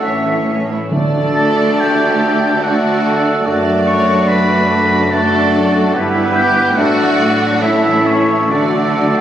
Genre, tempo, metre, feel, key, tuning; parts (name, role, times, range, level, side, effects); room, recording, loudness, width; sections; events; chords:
classical; 71 BPM; 3/4; uneven beats, rubato; D major; A4 = 440 Hz
warm studio violin section; melody; 0.0-9.2 s; B4 to D5; -26 LUFS; left 2 dB
clear oboe; second line; 0.0-9.2 s; C#5 to C#6; -18 LUFS; equal
small flute group; second line; 0.0-9.2 s; B4 to F#5; -23 LUFS; equal
warm clarinet; second line; 0.0-9.2 s; C#4 to E4; -26 LUFS; left 3 dB
clear bassoon; accompaniment; 0.0-9.2 s; A3 to B3; -22 LUFS; right 3 dB
dark studio viola section; accompaniment; 0.0-9.2 s; E3 to F#4; -20 LUFS; right 2 dB
mellow French horn section; sustained chords; 0.0-9.2 s; F#3 to E4; -22 LUFS; left 4 dB
concert harp; arpeggios; 0.0-9.2 s; F#2 to D6; -28 LUFS; left 4 dB
mellow trumpet; stabs; 0.0-9.2 s; F#4 to A4; -21 LUFS; right 2 dB
warm studio cello section; bass; 0.0-9.2 s; D2 to D3; -20 LUFS; right 1 dB
warm studio double bass section; bass; 0.0-9.2 s; F#1 to D2; -26 LUFS; right 2 dB
timpani; percussion; 0.9-2.2 s; D3; -20 LUFS; right 1 dB
rich studio violin section; second line; 1.4-9.2 s; C#4 to C#5; -23 LUFS; left 1 dB
wet concert hall reverb, RT60 2.2 s; recorded on a phone in the room, studio reverb; -11 LUFS; side -10 dB against mid
0.0-9.2 A section
0.0 A; 0.9 D; 3.5 D/F#; 5.9 Em/G; 6.8 D/A; 7.6 A; 8.5 D